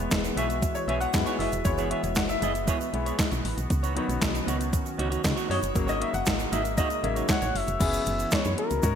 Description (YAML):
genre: early-eighties boogie funk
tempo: 117 BPM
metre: 4/4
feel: straight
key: unclear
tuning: A4 = 441 Hz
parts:
  - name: bright grand piano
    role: accompaniment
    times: 0.0-9.0 s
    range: C#3 to F#5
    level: -31 LUFS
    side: left 5 dB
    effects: none
  - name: chorused pulse-width pad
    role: sustained chords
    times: 0.0-9.0 s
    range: C#3 to F#4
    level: -35 LUFS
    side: right 1 dB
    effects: none
  - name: semi-hollow electric guitar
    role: riff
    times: 0.0-7.7 s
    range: A#3 to D#5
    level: -33 LUFS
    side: right 5 dB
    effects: lush chorus
  - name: woody FM bass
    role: bass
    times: 0.0-9.0 s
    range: E1 to C#3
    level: -31 LUFS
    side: equal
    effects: none
  - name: crisp 8-bit digital drum machine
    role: drums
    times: 0.1-9.0 s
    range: crash cymbal, handclaps, hi-hat, kick drum, snare drum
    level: -28 LUFS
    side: equal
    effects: overdrive, gated reverb
  - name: egg shaker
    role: percussion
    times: 0.1-8.9 s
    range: none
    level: -41 LUFS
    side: right 12 dB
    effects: none
  - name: expressive synth lead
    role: melody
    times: 7.3-9.0 s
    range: A#4 to F#5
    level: -29 LUFS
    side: left 2 dB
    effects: chorus
room: moderate lush hall reverb, RT60 1.9 s, digital ambience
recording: bright 1980s-style digital production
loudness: -24 LUFS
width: side -8 dB against mid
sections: 0.0-7.8 A section; 7.8-9.0 B section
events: grand piano solo 0.0-7.8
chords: 0.0 F#9sus4; 3.7 C#9sus4; 5.8 G#9sus4; 7.8 F#9sus4